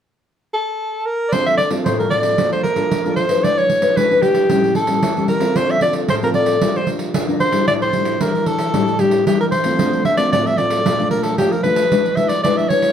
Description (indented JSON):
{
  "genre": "samba and choro",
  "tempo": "113 BPM",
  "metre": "4/4",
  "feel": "straight",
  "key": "D minor",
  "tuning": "A4 = 440 Hz",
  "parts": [
    { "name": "warm soprano saxophone", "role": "melody", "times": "0.5-12.9 s", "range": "G4 to E5", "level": "-17 LUFS", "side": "equal", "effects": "none" },
    { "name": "nylon-string guitar", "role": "accompaniment", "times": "1.3-12.9 s", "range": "A2 to B4", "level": "-20 LUFS", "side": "left 3 dB", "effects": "none" },
    { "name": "pandeiro", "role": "percussion", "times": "1.3-12.9 s", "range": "none", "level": "-22 LUFS", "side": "right 4 dB", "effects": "none" }
  ],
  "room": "wet studio reverb, RT60 0.8 s",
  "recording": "heard from further back in the room",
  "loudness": "-15 LUFS",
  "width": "side -8 dB against mid",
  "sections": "0.0-1.3 A section; 1.3-9.8 B section; 9.8-12.9 C section",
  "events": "none",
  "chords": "0.0 N.C.; 1.3 Dm7; 2.4 Bbmaj7; 3.4 E7/G#; 4.5 A7; 5.6 Dm7; 6.6 Gm7; 7.7 A7sus4; 9.8 Dm7; 10.9 Bbmaj7; 11.9 E7/G#",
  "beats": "0.27 0.80 | 1.33 1.86 2.39 2.92 | 3.44 3.97 4.50 5.03 | 5.56 6.09 6.62 7.15 | 7.68 8.21 8.74 9.27 | 9.80 10.33 10.86 11.39 | 11.92 12.45"
}